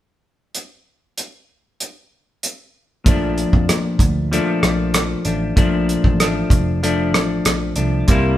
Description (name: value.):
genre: indie pop, bedroom pop.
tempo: 95 BPM.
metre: 4/4.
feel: straight.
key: Bb major.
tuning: A4 = 441 Hz.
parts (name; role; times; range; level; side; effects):
cloth-damped thuddy drum kit; drums; 0.5-8.2 s; hi-hat, kick drum, rim click; -17 LUFS; right 1 dB; none.
semi-hollow electric guitar; accompaniment; 3.0-8.4 s; Bb2 to E4; -19 LUFS; left 2 dB; vibrato effect.
vintage muted picked electric bass; bass; 3.1-8.4 s; F1 to Bb2; -22 LUFS; equal; none.
room: moderate stone room reverb, RT60 1.0 s.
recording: band playing live in one room.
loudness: -15 LUFS.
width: side -13 dB against mid.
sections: 0.5-3.1 A section; 3.1-8.4 B section.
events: none.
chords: 0.5 N.C.; 3.1 Bbmaj7.